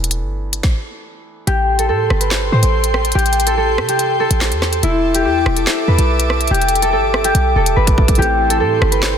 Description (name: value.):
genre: hip hop, drill.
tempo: 143 BPM.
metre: 4/4.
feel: half-time.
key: A minor.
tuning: A4 = 440 Hz.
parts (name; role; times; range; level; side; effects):
warm concert grand piano; accompaniment; 0.0-1.4, 8.2-9.2 s; E3 to A4; -26 LUFS; right 3 dB; low-pass filter.
short 808-style bass; bass; 0.0-9.2 s; E1 to C3; -18 LUFS; equal; none.
drill drum kit; drums; 0.0-9.1 s; handclaps, hi-hat, kick drum, rim click, snare drum; -18 LUFS; equal; none.
concert harp; melody; 1.5-9.2 s; E4 to C5; -16 LUFS; left 1 dB; low-pass filter.
airy breathy pad; sustained chords; 1.5-9.2 s; A4 to D6; -22 LUFS; right 1 dB; chorus.
room: digital ambience.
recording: dense, heavily limited modern master.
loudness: -13 LUFS.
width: side -8 dB against mid.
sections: 0.0-1.5 A section; 1.5-9.2 B section.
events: break 0.0-1.5; drum fill 7.3-8.2.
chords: 0.0 E7sus4; 1.5 Am7; 4.8 E7sus4; 8.2 Am7.